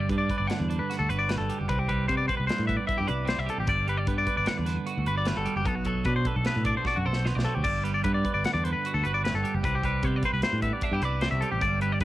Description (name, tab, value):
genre	math rock and midwest emo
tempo	151 BPM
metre	5/4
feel	straight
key	G major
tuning	A4 = 439 Hz
part	twelve-string electric guitar	accompaniment	0.0-12.0 s	G2 to D5	-31 LUFS	right 6 dB	cassette tape
part	twangy electric guitar	arpeggios	0.0-12.0 s	F#4 to F#5	-29 LUFS	left 3 dB	cassette tape
part	fingered electric bass	bass	0.0-12.0 s	F#1 to C3	-29 LUFS	equal	none
part	modern studio drum kit	drums	0.1-12.0 s	hi-hat, kick drum, snare drum, splash cymbal	-32 LUFS	equal	none
room	little or no reverb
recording	home recording on cassette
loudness	-24 LUFS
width	side -15 dB against mid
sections	0.0-12.0 A section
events	drum fill 6.9-7.7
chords	0.0 Gmaj9; 1.7 Cmaj7; 3.7 Gmaj7; 5.7 Bm7; 7.7 Gmaj7; 9.6 Cmaj7